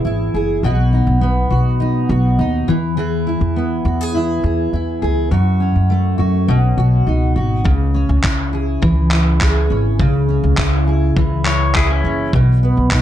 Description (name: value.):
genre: acoustic pop.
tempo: 102 BPM.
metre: 4/4.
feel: straight.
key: unclear.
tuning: A4 = 441 Hz.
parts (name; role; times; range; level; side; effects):
fingerpicked steel-string acoustic guitar; accompaniment; 0.0-13.0 s; F#2 to G#4; -17 LUFS; equal; double-tracked left and right.
upright bass; bass; 0.0-13.0 s; F#1 to F#2; -17 LUFS; equal; none.
dusty soul sampler-style drum kit; drums; 7.7-13.0 s; handclaps, kick drum; -18 LUFS; equal; none.
pedal steel guitar; second line; 11.5-12.3 s; C#4 to C#5; -20 LUFS; left 4 dB; none.
room: light reverb.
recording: dark, warm production.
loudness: -14 LUFS.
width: side -11 dB against mid.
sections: 0.0-7.7 A section; 7.7-13.0 B section.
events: none.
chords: 0.0 E; 0.6 B; 2.7 E; 5.3 F#m; 6.5 Badd9; 7.7 C#m; 12.3 B.